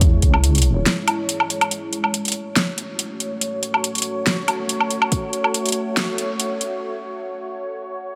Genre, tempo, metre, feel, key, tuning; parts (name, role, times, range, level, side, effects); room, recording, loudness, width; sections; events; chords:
deep dubstep; 141 BPM; 4/4; half-time; F# minor; A4 = 443 Hz
deep dark ambient pad; sustained chords; 0.0-8.2 s; G#3 to C#5; -28 LUFS; equal; chorus, built-in reverb
deep soft wobble bass; bass; 0.0-0.8 s; C#2 to E2; -19 LUFS; equal; chorus, tube saturation
deep house drum kit; drums; 0.0-6.7 s; hi-hat, snare drum, woodblock; -23 LUFS; equal
electronic kick drum; drums; 0.0-0.3, 5.1-5.2 s; -19 LUFS; equal
light reverb; high-pass filter; -21 LUFS; mono
0.0-1.7 A section; 1.7-8.2 B section
break 0.9-1.7, 6.8-8.2; build-up 1.7-8.2; filter sweep 1.7-8.2
0.0 C#m; 1.7 F#m